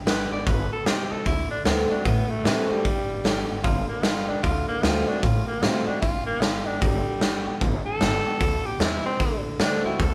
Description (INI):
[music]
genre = rockabilly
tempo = 151 BPM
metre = 4/4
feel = swing 63% on 8ths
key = G major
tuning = A4 = 439 Hz
[part]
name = picked steel-string acoustic guitar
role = accompaniment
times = 0.0-10.1 s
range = G2 to G4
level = -33 LUFS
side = equal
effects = none
[part]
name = upright bass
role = bass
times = 0.0-10.1 s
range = G1 to C3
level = -32 LUFS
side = equal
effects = none
[part]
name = raspy tenor saxophone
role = melody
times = 0.1-10.1 s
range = E3 to D5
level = -31 LUFS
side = equal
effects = none
[part]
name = raw garage drum kit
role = drums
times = 0.1-10.1 s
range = hi-hat, kick drum, snare drum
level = -27 LUFS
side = equal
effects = none
[sound]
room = moderate large studio reverb, RT60 1.0 s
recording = band playing live in one room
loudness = -24 LUFS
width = mono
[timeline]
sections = 0.0-10.1 A section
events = tenor saxophone solo 0.0-10.1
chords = 0.0 G; 1.3 D7; 2.8 G; 4.4 D7; 6.0 G; 9.2 D7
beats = 0.07 0.46 0.86 | 1.26 1.66 2.05 2.45 | 2.85 3.24 3.64 4.04 | 4.43 4.83 5.23 5.63 | 6.02 6.42 6.82 7.21 | 7.61 8.01 8.41 8.80 | 9.20 9.60 9.99